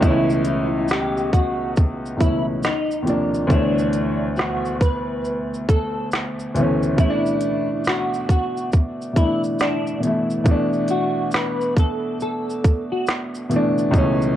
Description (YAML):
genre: lo-fi hip hop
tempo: 69 BPM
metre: 4/4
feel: swing 63% on 16ths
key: unclear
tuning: A4 = 437 Hz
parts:
  - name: semi-hollow electric guitar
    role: melody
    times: 0.0-13.1 s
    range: D4 to B4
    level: -24 LUFS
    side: equal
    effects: ensemble chorus, low-pass filter
  - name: warm upright piano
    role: accompaniment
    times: 0.0-14.4 s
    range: C#2 to C#5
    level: -21 LUFS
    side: equal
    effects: low-pass filter
  - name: organic electronic drum kit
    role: drums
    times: 0.0-14.4 s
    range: handclaps, hi-hat, kick drum, shaker, snare drum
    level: -19 LUFS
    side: equal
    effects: none
room: light reverb, digital ambience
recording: cassette tape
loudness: -18 LUFS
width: side -12 dB against mid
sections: 0.0-10.5 A section; 10.5-14.4 B section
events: none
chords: 0.0 Aadd9/C#; 2.6 D#sus2; 3.5 Dsus2; 7.0 E7sus4